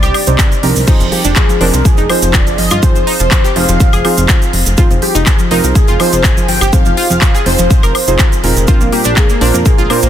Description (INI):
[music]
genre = progressive house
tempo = 123 BPM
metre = 4/4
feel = straight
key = F dorian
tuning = A4 = 440 Hz
[part]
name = wide unison lead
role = melody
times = 0.0-10.1 s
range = G4 to Ab5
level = -18 LUFS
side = left 1 dB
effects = wide subtle chorus, sidechain pumping, dub echo
[part]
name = analog pluck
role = arpeggios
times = 0.0-10.1 s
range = F3 to Bb4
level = -19 LUFS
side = equal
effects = chorus, sidechain pumping, dub echo
[part]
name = deep mellow chord stab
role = stabs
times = 0.0-10.1 s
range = Bb2 to C5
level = -17 LUFS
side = right 3 dB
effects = chorus, sidechain pumping, dub echo
[part]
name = plucky analog bass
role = bass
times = 0.0-10.1 s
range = F1 to F2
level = -15 LUFS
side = equal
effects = sidechain pumping
[part]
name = house drum kit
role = drums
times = 0.0-10.1 s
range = crash cymbal, handclaps, hi-hat, woodblock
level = -17 LUFS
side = left 1 dB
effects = sidechain pumping on hats, sidechain pumping on perc, sidechain pumping on cymbals
[part]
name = cabasa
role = percussion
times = 0.0-10.1 s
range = none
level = -22 LUFS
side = right 6 dB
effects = none
[part]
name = electronic kick drum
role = drums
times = 0.4-9.8 s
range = none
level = -11 LUFS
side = equal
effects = none
[sound]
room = little or no reverb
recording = dense, heavily limited modern master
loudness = -8 LUFS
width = side -10 dB against mid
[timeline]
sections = 0.0-10.1 A section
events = none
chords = 0.0 Cmadd9; 0.9 Fm7; 8.7 Bbadd9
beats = 0.39 | 0.88 1.36 1.85 2.34 | 2.83 3.31 3.80 4.29 | 4.78 5.27 5.75 6.24 | 6.73 7.22 7.71 8.19 | 8.68 9.17 9.66